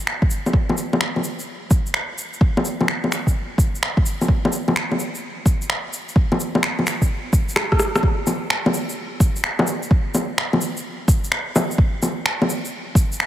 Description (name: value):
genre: future garage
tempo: 128 BPM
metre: 4/4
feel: swing 66% on 16ths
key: none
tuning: none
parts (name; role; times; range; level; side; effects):
- electronic finger snaps, shaker, bongos and rim click; drums; 0.1-13.3 s; none; -21 LUFS; equal; overdrive
- electronic kick drum; drums; 0.2-13.1 s; none; -17 LUFS; equal; overdrive
room: light reverb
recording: heavily compressed radio sound, multiband compression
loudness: -18 LUFS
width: side -12 dB against mid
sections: 0.0-8.0 A section; 8.0-13.3 B section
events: drum fill 7.6-8.0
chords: none